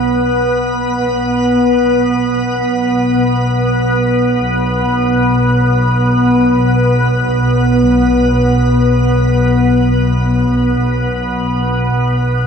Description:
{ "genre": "ambient", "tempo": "free time", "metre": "none", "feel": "none", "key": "unclear", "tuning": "A4 = 436 Hz", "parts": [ { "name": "dark chamber double bass section", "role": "bass", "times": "0.0-12.5 s", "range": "B1", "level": "-16 LUFS", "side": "equal", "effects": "none" }, { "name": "organ-like drone", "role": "drone", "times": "0.0-12.5 s", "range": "B3 to B4", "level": "-13 LUFS", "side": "equal", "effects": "ensemble chorus, built-in reverb, phaser" } ], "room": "wet huge ambient reverb, RT60 7.9 s", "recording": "dreamy mix soaked in reverb", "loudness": "-11 LUFS", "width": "side -6 dB against mid", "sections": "0.0-12.5 A section", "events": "none", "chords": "none" }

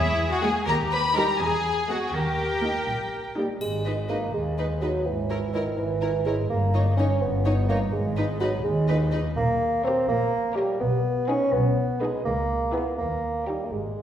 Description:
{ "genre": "cinematic, playful, whimsical film cue", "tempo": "83 BPM (dotted quarters)", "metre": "6/8", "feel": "straight", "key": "G# minor", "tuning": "A4 = 439 Hz", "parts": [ { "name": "warm chamber violin section", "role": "melody", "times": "0.0-13.6 s", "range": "B4 to B5", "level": "-30 LUFS", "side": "left 3 dB", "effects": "none" }, { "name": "rich studio violin section", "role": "second line", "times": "0.0-13.6 s", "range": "E4 to C#5", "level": "-32 LUFS", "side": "left 1 dB", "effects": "none" }, { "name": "warm chamber cello section", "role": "bass", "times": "0.0-14.0 s", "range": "C#2 to A#4", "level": "-30 LUFS", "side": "equal", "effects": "none" }, { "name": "warm chamber double bass section", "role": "bass", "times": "0.0-14.0 s", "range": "G1 to E2", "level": "-29 LUFS", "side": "right 1 dB", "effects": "none" }, { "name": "warm chamber viola section", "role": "accompaniment", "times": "0.4-13.6 s", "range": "G3 to G4", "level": "-34 LUFS", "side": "equal", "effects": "none" }, { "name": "dark bassoon", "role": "accompaniment", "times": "3.4-14.0 s", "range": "D#3 to C#4", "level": "-25 LUFS", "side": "right 1 dB", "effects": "none" }, { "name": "triangle", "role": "percussion", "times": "3.6-4.5 s", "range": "none", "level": "-42 LUFS", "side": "left 2 dB", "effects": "none" } ], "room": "wet scoring stage reverb, RT60 1.6 s", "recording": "heard from further back in the room", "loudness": "-22 LUFS", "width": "side -10 dB against mid", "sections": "0.0-3.6 A section; 3.6-14.0 B section", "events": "none", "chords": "0.0 Eadd9; 0.7 D#; 1.4 E; 2.1 D#; 3.6 G#m; 5.1 A#m7b5/G#; 6.5 D#7/G; 7.9 G#m; 9.4 Gdim/Bb; 10.8 G#m/B; 12.3 C#m7; 13.0 D#7" }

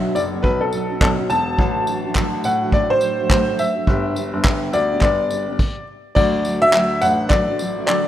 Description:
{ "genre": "acoustic pop", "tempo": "105 BPM", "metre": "4/4", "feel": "swing 60% on 16ths", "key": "D mixolydian", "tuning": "A4 = 442 Hz", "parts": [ { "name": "bright upright piano", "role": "melody", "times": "0.0-8.1 s", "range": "A4 to A5", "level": "-19 LUFS", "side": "left 1 dB", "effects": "none" }, { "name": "fingerpicked steel-string acoustic guitar", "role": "accompaniment", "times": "0.0-8.1 s", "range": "G2 to G4", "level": "-24 LUFS", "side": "right 1 dB", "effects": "double-tracked left and right" }, { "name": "clear baby grand piano", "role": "bass", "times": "0.0-8.1 s", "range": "E1 to A2", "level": "-26 LUFS", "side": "left 1 dB", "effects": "none" }, { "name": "vintage brush drum kit", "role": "drums", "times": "0.2-8.0 s", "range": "crash cymbal, handclaps, kick drum, tambourine", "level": "-20 LUFS", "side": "equal", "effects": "none" } ], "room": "moderate lush hall reverb, RT60 1.7 s", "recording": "rough home demo mix", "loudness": "-16 LUFS", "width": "side -12 dB against mid", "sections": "0.0-6.2 A section; 6.2-8.1 B section", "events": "stop 5.6-6.2", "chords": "0.0 Bm; 1.6 D/A; 3.9 G; 6.2 D" }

